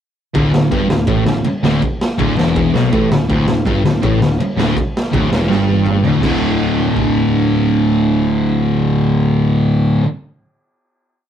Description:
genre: punk rock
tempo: 163 BPM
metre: 4/4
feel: straight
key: unclear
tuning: A4 = 440 Hz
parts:
  - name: sludgy distorted guitar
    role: riff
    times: 0.3-10.0 s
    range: D2 to D3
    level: -18 LUFS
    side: left 7 dB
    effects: overdrive
  - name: sludgy distorted guitar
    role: riff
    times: 0.3-10.1 s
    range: D2 to D3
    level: -18 LUFS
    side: right 5 dB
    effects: overdrive
  - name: thick fuzz guitar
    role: riff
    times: 0.3-10.1 s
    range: D2 to D3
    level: -20 LUFS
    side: equal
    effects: distortion
  - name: raw garage drum kit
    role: drums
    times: 0.3-7.1 s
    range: crash cymbal, kick drum, ride cymbal, snare drum, toms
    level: -20 LUFS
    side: right 1 dB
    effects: none
  - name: modern bright picked electric bass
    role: bass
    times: 0.4-10.0 s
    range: D1 to B1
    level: -20 LUFS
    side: equal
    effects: none
room: moderate studio reverb, RT60 0.5 s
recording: rough rehearsal-room recording, warm saturation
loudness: -13 LUFS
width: side -9 dB against mid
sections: 0.3-6.2 riff; 6.2-9.2 final chord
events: drum fill 5.5-6.2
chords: 0.3 D5

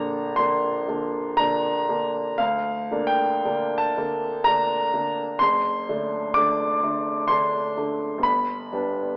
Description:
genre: classical, romantic nocturne for solo piano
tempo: 57-65 BPM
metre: 3/4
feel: rubato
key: unclear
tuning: A4 = 440 Hz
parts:
  - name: warm grand piano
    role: solo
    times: 0.0-9.2 s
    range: F#1 to D6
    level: -21 LUFS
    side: equal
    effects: none
room: moderate recital hall reverb, RT60 1.6 s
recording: worn, warbling old tape, cassette tape, warbly pitch drift, AM radio sound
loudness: -21 LUFS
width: side -33 dB against mid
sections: 0.0-9.2 A section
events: none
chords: 0.0 Bb; 2.4 Bb/D; 5.4 D7/F#; 8.3 G

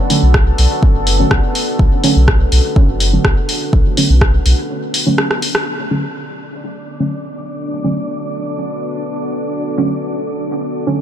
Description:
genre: dub techno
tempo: 124 BPM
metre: 4/4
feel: straight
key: B minor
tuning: A4 = 440 Hz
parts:
  - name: deep dark ambient pad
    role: sustained chords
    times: 0.0-11.0 s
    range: B3 to A4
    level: -22 LUFS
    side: equal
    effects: chorus, built-in reverb, sidechain pumping
  - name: deep mellow chord stab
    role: stabs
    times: 0.1-11.0 s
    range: D3 to C#4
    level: -20 LUFS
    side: right 2 dB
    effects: chorus, phaser, dub echo
  - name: deep house drum kit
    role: drums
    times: 0.1-5.6 s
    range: hi-hat, rim click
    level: -18 LUFS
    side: equal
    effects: none
  - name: soft dub sub bass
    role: bass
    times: 0.2-4.5 s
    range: F#1 to B1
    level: -13 LUFS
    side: equal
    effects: sidechain pumping
  - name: electronic kick drum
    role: drums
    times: 0.3-4.3 s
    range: none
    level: -13 LUFS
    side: equal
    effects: none
  - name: wind-like tuned noise texture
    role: texture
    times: 6.5-11.0 s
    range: D4 to D5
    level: -27 LUFS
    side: left 1 dB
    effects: built-in reverb, sidechain pumping
room: light reverb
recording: none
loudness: -13 LUFS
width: side -10 dB against mid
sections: 0.0-5.7 A section; 5.7-11.0 B section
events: break 4.7-5.7; drum fill 5.2-5.7; band accent 5.5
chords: 0.0 Bm7

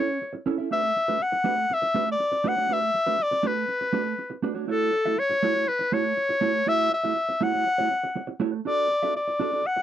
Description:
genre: disco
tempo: 121 BPM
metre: 4/4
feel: straight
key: unclear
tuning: A4 = 440 Hz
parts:
  - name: bright clarinet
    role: melody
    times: 0.0-9.8 s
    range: A4 to F#5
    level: -23 LUFS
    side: left 2 dB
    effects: none
  - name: mellow electric guitar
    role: accompaniment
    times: 0.0-9.8 s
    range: A3 to E5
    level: -28 LUFS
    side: right 7 dB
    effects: none
room: light reverb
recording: dry, close 1970s-style studio recording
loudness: -22 LUFS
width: side -11 dB against mid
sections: 0.0-4.7 A section; 4.7-9.8 B section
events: none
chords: 0.0 F#m7 (rootless); 0.7 Bm7; 4.7 F#m7; 8.6 D

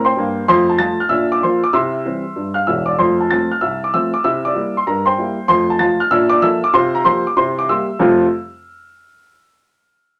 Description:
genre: jazz, stride piano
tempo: 191 BPM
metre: 4/4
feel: swing 59% on 8ths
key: F major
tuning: A4 = 442 Hz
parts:
  - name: warm upright piano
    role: solo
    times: 0.0-8.3 s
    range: E1 to A6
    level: -16 LUFS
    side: equal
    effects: none
room: wet small room reverb, RT60 0.5 s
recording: none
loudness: -16 LUFS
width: mono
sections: 0.0-8.0 A section; 8.0-9.3 B section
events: none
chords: 0.5 F; 1.1 Bb; 1.7 C; 3.0 F; 4.2 C7; 5.5 F; 6.1 Bbmaj7; 6.8 C7sus4; 7.4 C7; 8.0 F

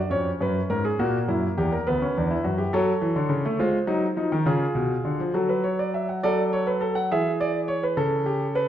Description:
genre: classical, baroque-style 3-part fugue for grand piano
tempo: 68 BPM (dotted quarters)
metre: 6/8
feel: straight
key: unclear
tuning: A4 = 443 Hz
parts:
  - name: warm concert grand piano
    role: solo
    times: 0.0-8.7 s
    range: D2 to F#5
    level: -22 LUFS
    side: equal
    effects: none
room: wet recital hall reverb, RT60 1.4 s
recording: dark, warm production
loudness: -22 LUFS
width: side -10 dB against mid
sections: 0.0-6.2 A section; 6.2-8.7 B section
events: none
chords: 0.1 C#7/E#; 1.0 F#7; 1.9 Bm/D; 2.7 F#m; 3.6 G#7; 4.5 C#7; 5.3 F#m; 6.2 D/F#; 7.1 E7; 8.0 A7/C#

